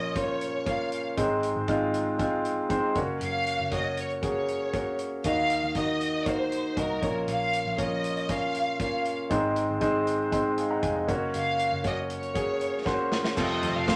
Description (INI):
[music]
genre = piano-driven pop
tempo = 118 BPM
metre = 4/4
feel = straight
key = Bb minor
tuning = A4 = 440 Hz
[part]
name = rich studio violin section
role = melody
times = 0.0-14.0 s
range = Bb4 to F5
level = -33 LUFS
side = equal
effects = none
[part]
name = warm concert grand piano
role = accompaniment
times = 0.0-14.0 s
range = Ab2 to Bb5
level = -30 LUFS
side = equal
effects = none
[part]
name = vintage muted picked electric bass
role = bass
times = 0.0-14.0 s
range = F1 to Eb2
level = -40 LUFS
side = equal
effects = none
[part]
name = modern studio drum kit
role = drums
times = 0.2-14.0 s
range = crash cymbal, hi-hat, kick drum, snare drum, toms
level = -36 LUFS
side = equal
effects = none
[part]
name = warm studio string section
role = sustained chords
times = 13.4-14.0 s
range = F4 to A5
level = -42 LUFS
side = equal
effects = none
[part]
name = picked steel-string acoustic guitar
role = riff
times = 13.4-14.0 s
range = F2 to F4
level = -32 LUFS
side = equal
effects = none
[sound]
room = wet studio reverb, RT60 0.7 s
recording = none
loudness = -28 LUFS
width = mono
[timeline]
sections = 0.0-13.4 A section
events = drum fill 12.9-13.4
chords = 0.0 Bbm; 1.2 Ab; 3.0 Gb; 5.2 Ebm; 7.0 Bbm; 9.3 Ab; 11.1 Gb; 13.4 F